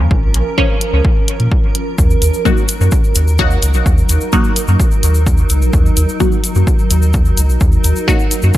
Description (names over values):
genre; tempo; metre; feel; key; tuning
dub techno; 128 BPM; 4/4; straight; unclear; A4 = 440 Hz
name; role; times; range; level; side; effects
granular cloud pad; sustained chords; 0.0-8.6 s; F3 to Bb4; -22 LUFS; right 2 dB; built-in reverb, sidechain pumping
soft dub sub bass; bass; 0.0-8.5 s; Bb1 to Bb2; -13 LUFS; equal; sidechain pumping
electronic kick drum; drums; 0.1-8.6 s; none; -14 LUFS; equal; none
electronic hi-hat; drums; 0.3-8.4 s; none; -19 LUFS; left 1 dB; none
filtered dub chord stab; stabs; 0.6-8.3 s; Db3 to Gb4; -19 LUFS; left 1 dB; phaser, sidechain pumping, dub echo
egg shaker; percussion; 2.0-8.6 s; none; -24 LUFS; left 3 dB; none
room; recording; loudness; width
digital ambience; none; -11 LUFS; side -14 dB against mid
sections
0.0-8.6 A section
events
none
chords
0.0 Bbm; 2.0 Ebm